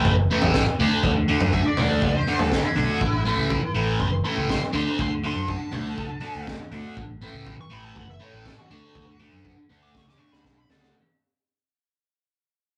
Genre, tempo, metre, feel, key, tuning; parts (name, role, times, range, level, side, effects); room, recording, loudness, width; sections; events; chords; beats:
psychedelic rock; 121 BPM; 4/4; straight; A4 = 441 Hz
thick fuzz guitar; riff; 0.0-10.9 s; A2 to D4; -27 LUFS; equal; distortion, phaser
fingered electric bass; bass; 0.1-10.9 s; F#1 to F#2; -30 LUFS; equal
crunchy breakbeat drum kit; drums; 0.1-10.9 s; kick drum, snare drum, toms; -30 LUFS; equal
biting lead guitar; melody; 1.5-10.9 s; E4 to D6; -34 LUFS; equal; wah, overdrive
moderate studio reverb, RT60 0.5 s; rough rehearsal-room recording, warm saturation; -23 LUFS; mono
0.0-10.9 A section
fade-out 0.0-10.9; lead electric guitar solo 0.0-10.9; drum fill 9.9-10.9
0.0 A5; 0.8 D5; 3.0 A; 4.7 D5; 7.0 A5; 8.7 D
0.04 0.53 | 1.03 1.52 2.01 2.51 | 3.00 3.50 3.99 4.48 | 4.98 5.47 5.97 6.46 | 6.96 7.46 7.95 8.45 | 8.95 9.44 9.94 10.44